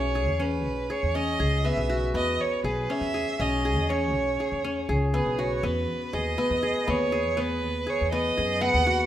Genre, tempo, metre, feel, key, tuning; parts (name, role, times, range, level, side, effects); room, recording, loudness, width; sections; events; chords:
contemporary instrumental, chamber music in an uneven meter; 241 BPM (eighths); 7/8; straight; E major; A4 = 441 Hz
warm violin; melody; 0.0-9.0 s; G#4 to F#5; -28 LUFS; right 3 dB
qanun; arpeggios; 0.0-9.1 s; B3 to G#4; -27 LUFS; left 2 dB
upright bass; bass; 0.0-9.1 s; B1 to F#2; -29 LUFS; equal
moderate recital hall reverb, RT60 1.6 s; -24 LUFS; side -11 dB against mid
0.0-9.1 A section
0.0 E6; 5.6 G#m